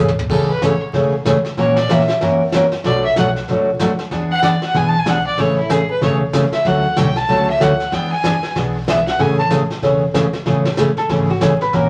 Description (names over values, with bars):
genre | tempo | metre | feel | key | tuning
country, western swing | 189 BPM | 4/4 | swing 61% on 8ths | A major | A4 = 441 Hz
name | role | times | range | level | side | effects
picked steel-string acoustic guitar | accompaniment | 0.0-11.9 s | B2 to A#4 | -18 LUFS | equal | none
upright bass | bass | 0.0-11.9 s | E1 to G#2 | -28 LUFS | equal | none
vintage brush drum kit | drums | 0.1-11.9 s | brushed snare drum, crash cymbal, hi-hat, kick drum, snare drum, toms | -27 LUFS | equal | none
clear fiddle | melody | 0.3-9.5 s | E4 to A5 | -22 LUFS | equal | none
archtop guitar, miked and amplified | second line | 11.0-11.9 s | F#4 to B4 | -23 LUFS | equal | none
room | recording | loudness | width
wet small room reverb, RT60 0.5 s | vinyl crackle | -16 LUFS | mono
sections
0.3-10.5 A section; 10.5-11.9 A section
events
drum fill 0.0-0.3; fiddle solo 0.3-10.5; hollow-body jazz guitar solo 10.5-11.9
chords
0.3 Amaj7; 1.6 F#7/A#; 2.8 Bm7; 4.1 E7; 5.4 Amaj7; 6.7 Dmaj7; 7.9 E7; 9.2 Amaj7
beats
| 0.30 0.62 0.94 1.26 | 1.57 1.89 2.21 2.53 | 2.84 3.16 3.48 3.80 | 4.11 4.43 4.75 5.07 | 5.38 5.70 6.02 6.34 | 6.65 6.97 7.29 7.61 | 7.92 8.24 8.56 8.88 | 9.20 9.51 9.83 10.15 | 10.47 10.78 11.10 11.42 | 11.74